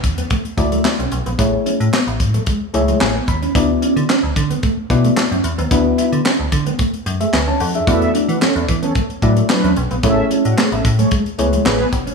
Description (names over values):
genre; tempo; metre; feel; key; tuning
early-eighties boogie funk; 111 BPM; 4/4; straight; A major; A4 = 441 Hz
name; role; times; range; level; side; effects
metallic FM bass; bass; 0.0-12.1 s; F1 to E3; -19 LUFS; equal; none
tight funk drum kit; drums; 0.0-12.1 s; handclaps, hi-hat, kick drum, snare drum; -20 LUFS; left 1 dB; none
mellow electric guitar; riff; 0.2-12.1 s; G#3 to E4; -22 LUFS; right 3 dB; lush chorus
mellow FM electric piano; accompaniment; 0.6-11.8 s; A3 to B5; -20 LUFS; left 4 dB; chorus
mellow synth brass; second line; 7.9-11.9 s; F#3 to F#5; -20 LUFS; right 2 dB; chorus
room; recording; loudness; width
light reverb; studio ambience; -14 LUFS; side -4 dB against mid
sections
0.0-12.1 A section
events
FM electric piano fill 2.5-3.5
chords
0.0 E9sus4; 1.4 Amaj7; 3.5 D69; 7.9 E9sus4; 10.0 Amaj7